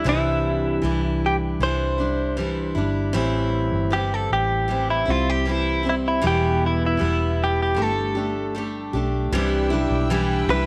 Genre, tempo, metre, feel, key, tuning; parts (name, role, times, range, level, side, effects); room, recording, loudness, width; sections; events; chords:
pop; 78 BPM; 4/4; straight; C major; A4 = 440 Hz
direct-recorded clean electric guitar; melody; 0.0-10.7 s; E4 to C5; -26 LUFS; equal; subtle chorus
picked steel-string acoustic guitar; accompaniment; 0.0-10.7 s; E2 to G4; -26 LUFS; equal
vintage muted fingered electric bass; bass; 0.1-10.7 s; E1 to C2; -28 LUFS; equal
warm symphonic string section; sustained chords; 9.3-10.7 s; G4 to E6; -32 LUFS; equal
moderate echo chamber reverb, RT60 1.7 s, small room ambience; -22 LUFS; mono
0.0-9.3 A section; 9.3-10.7 B section
0.0 Cadd9; 3.1 Am7; 6.2 Em; 7.8 Gsus2; 9.3 Cadd9